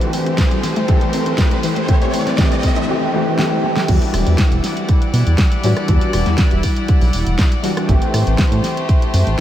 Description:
nu-disco, nu disco; 120 BPM; 4/4; straight; E minor; A4 = 435 Hz
dark baby grand piano; accompaniment; 0.0-9.4 s; E3 to G4; -20 LUFS; equal; ensemble chorus, low-pass filter, tape echo
warm studio string section; sustained chords; 0.0-9.4 s; A3 to F#5; -25 LUFS; left 1 dB; sidechain pumping
wide unison pluck; arpeggios; 0.0-2.8 s; E3 to C4; -26 LUFS; left 2 dB
pop drum kit; drums; 0.0-9.4 s; crash cymbal, hi-hat, rim click, snare drum; -23 LUFS; equal; studio reverb
riser; sound effects; 0.0-2.9 s; -28 LUFS; equal
electronic kick drum; drums; 0.4-9.0 s; -15 LUFS; equal; studio reverb
chorused synth bass; bass; 3.9-9.4 s; E1 to B2; -16 LUFS; equal
moderate huge ambient reverb, RT60 7.4 s; dreamy mix soaked in reverb; -14 LUFS; side -12 dB against mid
0.0-3.9 A section; 3.9-9.4 B section
build-up 0.0-3.9; riser 0.0-2.9; filter sweep on grand piano 0.0-3.9; drum fill 3.4-3.9; drop 3.9-9.4
0.0 Am7; 3.9 Em9; 7.9 Am7
0.39 0.89 1.39 | 1.89 2.39 2.89 3.39 | 3.89 4.39 4.89 5.39 | 5.89 6.39 6.89 7.39 | 7.89 8.39 8.89 9.39

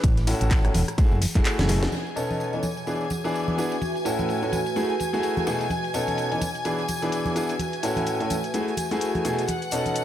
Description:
piano house; 127 BPM; 4/4; swing 58% on 16ths; B mixolydian; A4 = 442 Hz
fat analog bass; bass; 0.0-1.9 s; E1 to A1; -23 LUFS; equal; sidechain pumping
dusty soul sampler-style drum kit; drums; 0.0-1.8 s; ride cymbal, snare drum; -40 LUFS; right 1 dB
electronic kick drum; drums; 0.0-1.4 s; -20 LUFS; equal
house drum kit; drums; 0.0-10.0 s; crash cymbal, handclaps, hi-hat, rim click, shaker, snare drum; -32 LUFS; left 1 dB; low-pass filter on hats, low-pass filter on snare, low-pass filter on cymbals, low-pass filter on perc, low-pass filter on room
congas and tambourine; percussion; 0.0-10.0 s; -32 LUFS; equal
clear concert grand piano; riff; 0.3-10.0 s; A2 to A4; -26 LUFS; left 1 dB; sidechain pumping, digital delay
rich studio violin section; sustained chords; 1.9-10.0 s; F#5 to G#6; -32 LUFS; left 2 dB; sidechain pumping
warbly tape-like pad; texture; 2.7-10.0 s; A3 to G#5; -32 LUFS; right 1 dB; chorus, built-in reverb, phaser, sidechain pumping
moderate digital room reverb, RT60 1.4 s, digital ambience; -22 LUFS; side -11 dB against mid
0.0-1.9 A section; 1.9-10.0 B section
kick drops out 1.5-1.9; drum fill 1.6-1.9; band accent 1.8; filter sweep on drum 1.9-10.0
0.0 A6; 1.0 F#m9; 1.9 B9; 2.6 E7; 3.8 A6; 4.8 F#m9; 5.7 B9; 6.4 E7; 7.6 A6; 8.5 F#m9; 9.5 B9
| 0.04 0.51 0.98 1.45 | 1.93 2.40 2.87 3.34 | 3.81 4.29 4.76 5.23 | 5.71 6.18 6.65 7.12 | 7.59 8.07 8.54 9.01 | 9.48 9.96

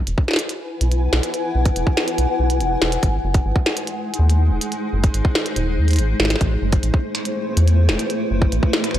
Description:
IDM; 142 BPM; 4/4; straight; E major; A4 = 445 Hz
granular cloud pad; sustained chords; 0.5-9.0 s; G#3 to G#5; -24 LUFS; left 1 dB; built-in reverb
rubbery square bass; bass; 0.1-9.0 s; D#1 to E2; -18 LUFS; equal
glitchy drum kit; drums; 0.1-9.0 s; finger snaps, hi-hat, snare drum; -22 LUFS; equal
electronic kick drum; drums; 0.2-8.7 s; -17 LUFS; equal
little or no reverb; dry, gritty hardware recording, cassette tape; -17 LUFS; side -12 dB against mid
0.0-9.0 A section
0.0 Eadd9; 3.0 G#7; 6.4 Am6
0.07 0.49 0.92 | 1.34 1.76 2.18 2.61 | 3.03 3.45 3.87 4.30 | 4.72 5.14 5.56 5.99 | 6.41 6.83 7.25 7.68 | 8.10 8.52 8.94

